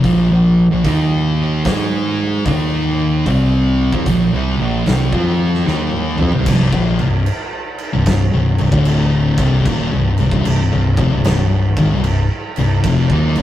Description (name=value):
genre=stoner and doom metal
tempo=75 BPM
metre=4/4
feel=swing 65% on 8ths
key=C minor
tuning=A4 = 438 Hz
part: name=thick fuzz guitar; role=riff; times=0.0-13.4 s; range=C2 to Ab4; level=-16 LUFS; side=left 2 dB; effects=distortion
part: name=thick fuzz guitar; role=riff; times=0.0-6.5, 12.8-13.4 s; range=F2 to Ab4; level=-18 LUFS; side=right 4 dB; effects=distortion
part: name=growling fingered electric bass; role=bass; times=0.0-13.4 s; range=C1 to Ab2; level=-21 LUFS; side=equal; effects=overdrive
part: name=oversized low-tuned drum kit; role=drums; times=0.0-13.4 s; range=crash cymbal, hi-hat, kick drum, snare drum, toms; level=-21 LUFS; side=right 1 dB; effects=none
room=light reverb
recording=rough rehearsal-room recording, tube saturation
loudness=-13 LUFS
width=side -12 dB against mid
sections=0.0-6.5 A section; 6.5-13.4 B section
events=drum fill 5.7-6.5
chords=0.0 Bb5; 0.8 Eb5; 1.7 Ab5; 2.5 Eb5; 3.3 Bb5; 6.5 C5; 12.8 F5